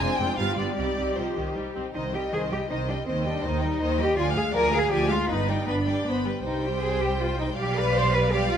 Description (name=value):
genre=quick classical-period movement for string orchestra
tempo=160 BPM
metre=3/4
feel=rubato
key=C minor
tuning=A4 = 440 Hz
part: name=rich studio violin section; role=melody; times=0.0-8.6 s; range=C5 to B5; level=-32 LUFS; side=left 3 dB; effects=none
part: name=rich studio violin section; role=second line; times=0.0-8.6 s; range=D4 to F5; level=-32 LUFS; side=left 1 dB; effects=none
part: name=rich studio viola section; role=accompaniment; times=0.0-8.6 s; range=Eb3 to C4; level=-31 LUFS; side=equal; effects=none
part: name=clear studio double bass section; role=bass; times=0.0-8.6 s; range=F1 to Eb2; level=-29 LUFS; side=right 2 dB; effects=none
part: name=warm studio cello section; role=bass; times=0.0-8.6 s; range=C4 to C5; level=-27 LUFS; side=equal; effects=none
room=light reverb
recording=none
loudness=-23 LUFS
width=side -8 dB against mid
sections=0.0-2.0 A section; 2.0-8.6 A section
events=none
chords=0.0 Fm; 0.4 G7; 0.8 Cm; 3.1 Cm/Eb; 4.2 Ddim; 5.3 G; 6.4 Cm; 7.6 G7/B